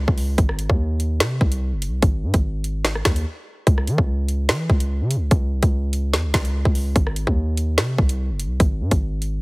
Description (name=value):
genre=hip hop, drill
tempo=146 BPM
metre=4/4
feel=half-time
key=C# harmonic minor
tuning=A4 = 441 Hz
part: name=hard-hitting 808-style bass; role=bass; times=0.0-9.4 s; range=F#1 to E3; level=-22 LUFS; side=equal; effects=none
part: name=drill drum kit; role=drums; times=0.1-9.3 s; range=hi-hat, kick drum, rim click, snare drum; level=-19 LUFS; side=equal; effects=none
room=little or no reverb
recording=heavily compressed radio sound, multiband compression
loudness=-18 LUFS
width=side -28 dB against mid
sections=0.0-3.7 A section; 3.7-9.4 A section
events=break 3.3-3.7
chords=none